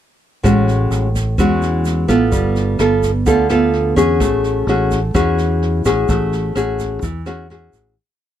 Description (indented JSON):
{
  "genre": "bossa nova",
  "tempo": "128 BPM",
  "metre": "4/4",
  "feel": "straight",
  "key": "A major",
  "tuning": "A4 = 437 Hz",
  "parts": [
    { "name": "nylon-string guitar", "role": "accompaniment", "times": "0.4-7.9 s", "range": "A2 to A4", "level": "-16 LUFS", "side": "equal", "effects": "none" },
    { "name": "fingered electric bass", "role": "bass", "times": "0.4-8.0 s", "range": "G1 to E2", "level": "-19 LUFS", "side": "equal", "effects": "none" },
    { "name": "jazz brush drum kit", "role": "drums", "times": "0.4-7.8 s", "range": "kick drum, rim click, snare drum", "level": "-24 LUFS", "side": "equal", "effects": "none" },
    { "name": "egg shaker", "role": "percussion", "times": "0.5-8.0 s", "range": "none", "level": "-36 LUFS", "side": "right 26 dB", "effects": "none" }
  ],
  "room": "little or no reverb",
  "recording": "none",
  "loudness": "-14 LUFS",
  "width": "side -10 dB against mid",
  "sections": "0.4-8.0 A section",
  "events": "fade-out 6.1-8.0",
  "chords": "0.4 Amaj13; 2.3 G9; 4.2 A6"
}